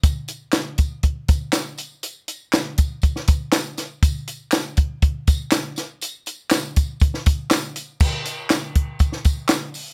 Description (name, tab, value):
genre	soul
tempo	121 BPM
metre	4/4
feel	straight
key	none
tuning	none
part	compact cocktail drum kit	drums	0.0-9.9 s	crash cymbal, hi-hat, kick drum, snare drum	-21 LUFS	equal	none
part	tambourine and handclaps	percussion	0.0-9.9 s	none	-30 LUFS	equal	none
room	light reverb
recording	none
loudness	-22 LUFS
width	mono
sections	0.0-8.0 A section; 8.0-9.9 B section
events	none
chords	none